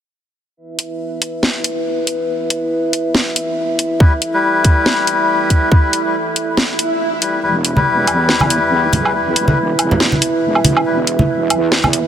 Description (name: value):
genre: deep dubstep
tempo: 140 BPM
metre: 4/4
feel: swing 56% on 16ths, half-time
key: E minor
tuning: A4 = 440 Hz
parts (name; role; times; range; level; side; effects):
- dark analog pad; sustained chords; 0.6-12.1 s; E4 to E5; -20 LUFS; right 2 dB; wide subtle chorus
- garage drum kit; drums; 0.8-12.0 s; hi-hat, snare drum, woodblock; -17 LUFS; equal; high-pass filter on hats, high-pass filter on snare, high-pass filter on perc
- melodica; stabs; 4.0-11.0 s; G3 to B4; -17 LUFS; left 3 dB; dub echo
- electronic kick drum; drums; 4.0-5.8 s; none; -10 LUFS; equal; none
- swell; sound effects; 6.7-7.4 s; none; -24 LUFS; right 2 dB; none
- wobble bass; bass; 7.4-12.1 s; E1 to E2; -22 LUFS; equal; chorus, high-pass filter
- congas; percussion; 7.8-11.9 s; none; -18 LUFS; right 1 dB; none
room: light reverb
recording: dense, heavily limited modern master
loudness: -13 LUFS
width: side -9 dB against mid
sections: 0.6-7.4 A section; 7.4-12.1 B section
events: swell 6.7-7.4; build-up 7.4-12.1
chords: 0.6 Em